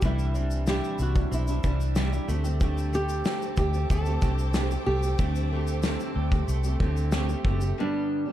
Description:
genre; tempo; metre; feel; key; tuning
acoustic pop; 93 BPM; 4/4; straight; unclear; A4 = 440 Hz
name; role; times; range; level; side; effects
nylon-string guitar; melody; 0.0-8.3 s; D4 to A4; -32 LUFS; right 1 dB; none
fingerpicked steel-string acoustic guitar; accompaniment; 0.0-8.3 s; G2 to G4; -32 LUFS; equal; double-tracked left and right
direct-recorded clean electric guitar; arpeggios; 0.0-8.3 s; E3 to G4; -39 LUFS; right 7 dB; tremolo
vintage muted fingered electric bass; bass; 0.0-7.7 s; F#1 to D2; -26 LUFS; equal; none
loose indie drum kit; drums; 0.0-7.8 s; kick drum, shaker, snare drum; -29 LUFS; equal; none
warm studio string section; sustained chords; 2.6-7.7 s; C5 to D6; -41 LUFS; equal; none
room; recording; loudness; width
small room reverb; dark, warm production; -24 LUFS; side -12 dB against mid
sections
0.0-7.8 A section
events
none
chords
0.0 Cadd9; 2.3 D7sus4; 7.8 G

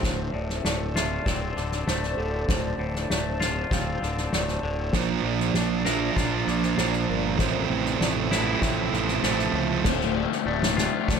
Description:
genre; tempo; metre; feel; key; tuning
post-rock; 98 BPM; 4/4; straight; D minor; A4 = 440 Hz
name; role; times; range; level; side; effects
granular cloud pad; sustained chords; 0.0-11.2 s; F3 to Bb5; -36 LUFS; left 1 dB; built-in reverb
felt-muted upright piano; arpeggios; 0.0-11.2 s; A4 to F5; -35 LUFS; right 4 dB; digital delay
twangy electric guitar; arpeggios; 0.0-11.2 s; D2 to Bb4; -32 LUFS; left 5 dB; digital delay
fuzz fingered electric bass; bass; 0.0-11.2 s; D1 to C#2; -30 LUFS; left 1 dB; overdrive
soft-mallet drum kit; drums; 0.0-11.2 s; crash cymbal, kick drum, snare drum; -28 LUFS; left 1 dB; none
thick fuzz guitar; riff; 4.9-9.8 s; F2 to Bb4; -25 LUFS; right 10 dB; distortion
raw garage guitar; riff; 9.8-11.2 s; D2 to A2; -27 LUFS; left 16 dB; overdrive
room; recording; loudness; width
light reverb, studio ambience; none; -23 LUFS; side -6 dB against mid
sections
0.0-9.9 A section; 9.9-11.2 B section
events
build-up 9.9-11.2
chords
0.0 Dm7; 4.9 Bbadd9; 7.4 Fmaj7/A; 9.9 Dm7

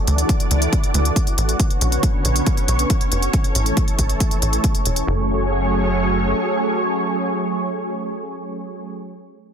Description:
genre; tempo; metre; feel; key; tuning
uplifting trance; 138 BPM; 4/4; straight; F# minor; A4 = 437 Hz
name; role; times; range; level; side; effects
analog string pad; sustained chords; 0.0-8.9 s; D3 to D5; -21 LUFS; right 1 dB; ensemble chorus, sidechain pumping
tight sequencer bass; bass; 0.1-6.3 s; E1 to D2; -20 LUFS; equal; sidechain pumping
electronic hi-hat; drums; 0.1-5.1 s; none; -25 LUFS; equal; overdrive
electronic kick drum; drums; 0.3-4.7 s; none; -20 LUFS; equal; overdrive
room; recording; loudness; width
light reverb, digital ambience; dense, heavily limited modern master; -17 LUFS; side -8 dB against mid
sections
0.0-5.1 A section; 5.1-8.6 B section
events
filter sweep on analog synth bass 0.0-5.1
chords
0.0 Dadd9; 1.6 Bmadd9; 3.3 A; 5.1 F#madd9

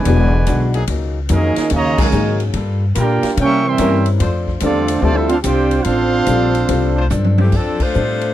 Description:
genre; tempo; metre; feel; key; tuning
jazz, big band swing; 145 BPM; 4/4; swing 66% on 8ths; F major; A4 = 442 Hz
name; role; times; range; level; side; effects
warm trumpet section; melody; 0.0-7.1 s; C4 to Db6; -20 LUFS; right 2 dB; none
clear trombone section; second line; 0.0-7.1 s; B2 to G4; -18 LUFS; right 4 dB; none
upright bass; bass; 0.0-8.3 s; E1 to C3; -17 LUFS; left 1 dB; none
fingerpicked swing-style acoustic guitar; accompaniment; 0.1-8.2 s; E3 to Db5; -26 LUFS; left 4 dB; none
warm baby grand piano; accompaniment; 0.1-8.2 s; F#3 to Bb4; -22 LUFS; left 8 dB; none
swinging big-band drum kit; drums; 0.1-8.3 s; crash cymbal, hi-hat, kick drum, ride cymbal, snare drum, toms; -25 LUFS; equal; none
brilliant trombone section; sustained chords; 0.7-7.1 s; F#3 to C5; -24 LUFS; left 3 dB; none
clear saxophone section; melody; 7.4-8.3 s; E3 to C5; -19 LUFS; left 3 dB; none
room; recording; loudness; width
light reverb; dry, close 1970s-style studio recording; -13 LUFS; side -12 dB against mid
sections
0.0-7.5 A section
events
band accent 1.9, 7.7; drum fill 7.1-7.5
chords
0.1 E9; 0.9 Gb69; 2.5 Gm9; 3.4 C7b9; 4.2 F6

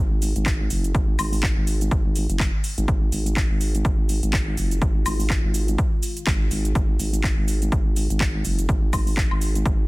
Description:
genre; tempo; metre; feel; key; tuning
bass house; 124 BPM; 4/4; swing 58% on 16ths; unclear; A4 = 440 Hz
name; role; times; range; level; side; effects
sweeping resonant pad; sustained chords; 4.8-9.9 s; D#3 to E#4; -40 LUFS; left 2 dB; none
vowel-sweep wobble bass; bass; 0.0-9.9 s; F#1 to G#1; -23 LUFS; equal; chorus, sidechain pumping
house drum kit; drums; 0.2-9.8 s; cabasa, handclaps, hi-hat, woodblock; -28 LUFS; equal; overdrive
electronic kick drum; drums; 0.5-9.8 s; none; -22 LUFS; equal; overdrive
room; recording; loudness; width
little or no reverb; dense, heavily limited modern master; -20 LUFS; side -23 dB against mid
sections
0.0-9.9 A section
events
none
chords
0.0 G#5

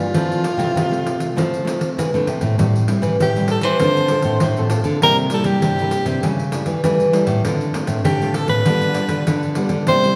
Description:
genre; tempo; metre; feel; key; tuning
samba and choro; 99 BPM; 4/4; straight; F major; A4 = 440 Hz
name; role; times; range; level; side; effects
clear soprano saxophone; melody; 0.0-10.2 s; F4 to C5; -22 LUFS; equal; none
nylon-string guitar; accompaniment; 0.0-10.2 s; G2 to A4; -25 LUFS; equal; none
nylon-string guitar; bass; 0.0-10.1 s; A2 to G3; -23 LUFS; equal; none
pandeiro; percussion; 0.1-10.2 s; none; -25 LUFS; equal; none
room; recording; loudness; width
wet concert hall reverb, RT60 2.4 s; recorded in a church or concert hall; -18 LUFS; mono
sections
0.0-2.6 A section; 2.6-10.2 B section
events
none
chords
0.2 Fmaj7; 2.6 Am7; 3.8 Dm7; 5.0 C7; 6.2 A7/C#; 7.5 Dm7; 8.7 G7/D

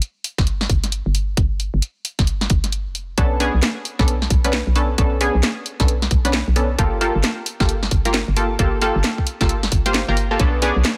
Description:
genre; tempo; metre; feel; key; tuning
UK garage, two-step garage; 133 BPM; 4/4; swing 62% on 16ths; unclear; A4 = 438 Hz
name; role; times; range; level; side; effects
garage drum kit; drums; 0.0-11.0 s; hi-hat, snare drum; -24 LUFS; equal; none
hollow knocking FM bass; bass; 0.4-10.8 s; F1 to B1; -23 LUFS; equal; none
electronic kick drum; drums; 0.4-10.5 s; none; -21 LUFS; equal; none
punchy chord stab; stabs; 3.2-10.7 s; Bb3 to C5; -24 LUFS; equal; chorus, digital delay
room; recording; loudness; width
little or no reverb; none; -19 LUFS; mono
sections
0.0-11.0 A section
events
none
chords
0.0 N.C.; 3.2 Bm9; 6.8 Gm9; 10.4 Bm9

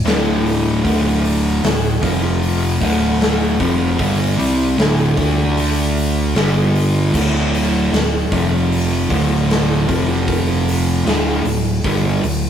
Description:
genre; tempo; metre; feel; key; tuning
stoner and doom metal; 76 BPM; 4/4; straight; D minor; A4 = 440 Hz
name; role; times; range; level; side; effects
fuzz guitar; riff; 0.0-12.5 s; D2 to D4; -17 LUFS; equal; distortion
overdriven fingered electric bass; bass; 0.0-12.5 s; D1 to D2; -21 LUFS; equal; none
big rock drum kit; drums; 0.1-12.4 s; crash cymbal, hi-hat, kick drum, snare drum; -21 LUFS; equal; none
room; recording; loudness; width
light reverb; rough rehearsal-room recording; -14 LUFS; side -9 dB against mid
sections
0.0-12.5 A section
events
none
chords
0.0 D5; 2.0 F5; 2.8 Dm; 6.3 G5; 7.1 D5; 8.3 F5; 9.1 D5; 9.9 F5; 11.1 D5

